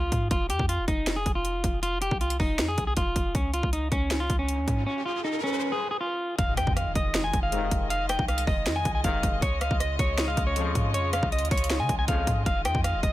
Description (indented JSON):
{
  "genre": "hip hop, trap",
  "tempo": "158 BPM",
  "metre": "4/4",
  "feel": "half-time",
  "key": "F minor",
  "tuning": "A4 = 440 Hz",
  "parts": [
    { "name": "electric guitar at the edge of break-up", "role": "melody", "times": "0.0-13.1 s", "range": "Db4 to Ab5", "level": "-28 LUFS", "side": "equal", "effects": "none" },
    { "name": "clean 808-style bass", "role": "bass", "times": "0.0-13.1 s", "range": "Eb1 to Db3", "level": "-30 LUFS", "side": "equal", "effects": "none" },
    { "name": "trap drum kit", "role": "drums", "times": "0.1-13.1 s", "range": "hi-hat, kick drum, rim click, snare drum", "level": "-28 LUFS", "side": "equal", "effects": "overdrive" },
    { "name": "riser and impact", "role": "sound effects", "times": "4.4-7.9 s", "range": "none", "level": "-35 LUFS", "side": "equal", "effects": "none" },
    { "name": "warm studio string section", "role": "sustained chords", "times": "6.4-13.1 s", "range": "Db3 to Eb5", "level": "-34 LUFS", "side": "equal", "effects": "none" },
    { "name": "bright brass ensemble", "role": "stabs", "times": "7.5-12.4 s", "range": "F2 to F3", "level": "-35 LUFS", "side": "left 6 dB", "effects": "ping-pong delay" }
  ],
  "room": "little or no reverb",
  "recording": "none",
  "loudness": "-24 LUFS",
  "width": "side -15 dB against mid",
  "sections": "0.0-6.4 A section; 6.4-13.1 B section",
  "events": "riser 4.4-6.4; break 4.9-6.4; impact 6.4-7.9",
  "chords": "0.3 F5; 3.3 Db; 6.4 Fm7; 9.4 Dbmaj7; 12.5 Fm7"
}